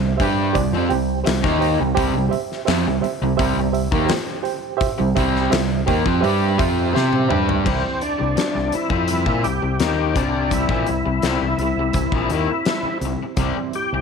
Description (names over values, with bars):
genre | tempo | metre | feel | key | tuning
classic rock | 84 BPM | 4/4 | straight | C mixolydian | A4 = 440 Hz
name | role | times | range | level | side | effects
reed electric piano | accompaniment | 0.0-7.6 s | G4 to G5 | -24 LUFS | right 12 dB | tremolo
overdriven semi-hollow guitar | riff | 0.0-14.0 s | Bb2 to C5 | -24 LUFS | left 12 dB | none
overdriven semi-hollow guitar | riff | 0.0-7.7 s | C3 to C5 | -22 LUFS | right 14 dB | none
growling fingered electric bass | bass | 0.0-14.0 s | Bb1 to C3 | -24 LUFS | equal | overdrive
huge arena drum kit | drums | 0.2-13.9 s | crash cymbal, hi-hat, kick drum, snare drum, toms | -25 LUFS | left 3 dB | none
overdriven tonewheel organ | melody | 7.7-14.0 s | C4 to G4 | -23 LUFS | left 1 dB | chorus vibrato, slow rotary speaker, tape echo
fingerpicked twelve-string acoustic guitar | accompaniment | 7.7-14.0 s | C3 to C5 | -29 LUFS | right 14 dB | none
room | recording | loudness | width
light reverb, small room ambience | 1960s-style stereo with parts hard left and right | -17 LUFS | side -6 dB against mid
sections
0.0-7.7 A section; 7.7-14.0 B section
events
drum fill 7.0-7.7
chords
0.0 C